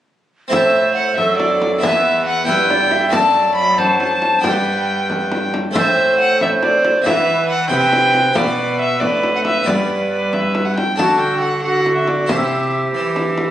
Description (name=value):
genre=classical, renaissance-style consort dance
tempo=92 BPM (dotted quarters)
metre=6/8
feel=straight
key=A dorian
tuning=A4 = 440 Hz
part: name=warm violin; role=melody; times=0.5-12.7 s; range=D5 to B5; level=-17 LUFS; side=left 1 dB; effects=none
part: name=tenor recorder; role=second line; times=0.5-13.5 s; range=F#4 to E5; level=-19 LUFS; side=right 2 dB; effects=none
part: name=harpsichord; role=accompaniment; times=0.5-13.5 s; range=E2 to D5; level=-24 LUFS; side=equal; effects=none
part: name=rich cello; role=bass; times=0.5-13.5 s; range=E2 to E3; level=-24 LUFS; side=equal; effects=none
part: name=frame drum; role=percussion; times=0.5-13.5 s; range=none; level=-23 LUFS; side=left 1 dB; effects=none
room=moderate stone room reverb, RT60 1.1 s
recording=recorded on a phone in the room, club reverb, compression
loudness=-14 LUFS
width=side -12 dB against mid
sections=0.5-11.0 A section; 11.0-13.5 B section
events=none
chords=0.5 Am; 1.8 Em; 3.1 D/F#; 4.4 G; 5.8 Am; 7.1 Em; 8.4 Bm; 9.7 G; 11.0 D; 12.3 C